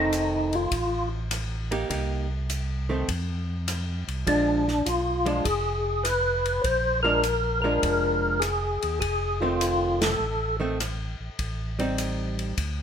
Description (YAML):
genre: soul jazz organ trio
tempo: 101 BPM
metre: 4/4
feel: swing 68% on 8ths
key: F mixolydian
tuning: A4 = 440 Hz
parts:
  - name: percussive tonewheel organ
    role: melody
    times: 0.0-10.6 s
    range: D4 to C5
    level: -24 LUFS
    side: left 1 dB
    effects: slow rotary speaker, chorus vibrato
  - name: archtop guitar, miked and amplified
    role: accompaniment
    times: 0.0-12.5 s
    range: Eb3 to G4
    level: -29 LUFS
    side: right 2 dB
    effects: none
  - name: tonewheel organ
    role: bass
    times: 0.0-12.8 s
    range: F1 to F2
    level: -30 LUFS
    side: equal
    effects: slow rotary speaker
  - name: open jazz drum kit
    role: drums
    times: 0.1-12.8 s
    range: hi-hat, kick drum, ride cymbal, rim click, snare drum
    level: -33 LUFS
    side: left 1 dB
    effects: none
room: moderate studio reverb, RT60 0.9 s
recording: minimal, uncompressed stereo recording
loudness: -24 LUFS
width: side -8 dB against mid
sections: 0.0-12.8 A section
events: band accent 9.9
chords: 0.0 F7; 1.9 Cm7; 3.1 F5; 4.3 Bb7; 9.0 F7; 11.4 Am7b5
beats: 0.12 0.71 1.30 | 1.90 2.49 3.08 3.67 | 4.27 4.86 5.45 6.05 | 6.64 7.23 7.83 8.42 | 9.02 9.61 10.20 10.79 | 11.39 11.98 12.57